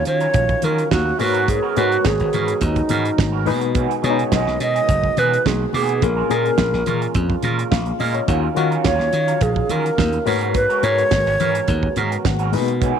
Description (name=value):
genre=disco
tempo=106 BPM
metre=4/4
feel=straight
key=unclear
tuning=A4 = 440 Hz
part: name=bright reedy wooden-headed alto flute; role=melody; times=0.0-12.0 s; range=Eb4 to D#5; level=-20 LUFS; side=right 2 dB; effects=none
part: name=barky reed electric piano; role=accompaniment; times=0.0-13.0 s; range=Bb2 to Gb5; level=-25 LUFS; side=left 14 dB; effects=overdrive, tremolo
part: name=mellow French horn section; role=sustained chords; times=0.0-13.0 s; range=Db3 to F5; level=-29 LUFS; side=right 14 dB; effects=none
part: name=slap bass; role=bass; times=0.0-12.9 s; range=F#1 to Eb3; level=-22 LUFS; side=equal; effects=none
part: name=electric guitar through a small old amp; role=accompaniment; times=0.1-13.0 s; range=Gb3 to Bb4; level=-27 LUFS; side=right 12 dB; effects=wah, spring reverb
part: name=damped 70s drum kit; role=drums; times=0.1-13.0 s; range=hi-hat, kick drum, snare drum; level=-23 LUFS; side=right 3 dB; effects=none
part: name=congas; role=percussion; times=0.3-13.0 s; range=none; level=-30 LUFS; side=left 11 dB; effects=none
room=light reverb, studio reverb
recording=1960s-style stereo with parts hard left and right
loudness=-16 LUFS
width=side -8 dB against mid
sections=0.0-13.0 A section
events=reed electric piano fill 12.0-12.8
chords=0.0 Ebm9; 1.2 Abm11; 3.5 B6; 6.0 Bbm7; 8.3 Ebm9; 10.3 Abm11